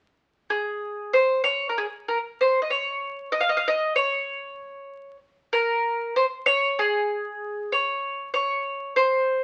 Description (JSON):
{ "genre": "mexican folk", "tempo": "96 BPM", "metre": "4/4", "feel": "straight", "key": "Db major", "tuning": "A4 = 440 Hz", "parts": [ { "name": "bowl-back mandolin", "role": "solo", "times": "0.5-9.4 s", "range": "Ab4 to F5", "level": "-25 LUFS", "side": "equal", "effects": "none" } ], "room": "moderate studio reverb, RT60 0.8 s", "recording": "very old 78 rpm record, vinyl crackle", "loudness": "-25 LUFS", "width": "mono", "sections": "0.0-1.4 A section; 1.4-9.4 B section", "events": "none", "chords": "none" }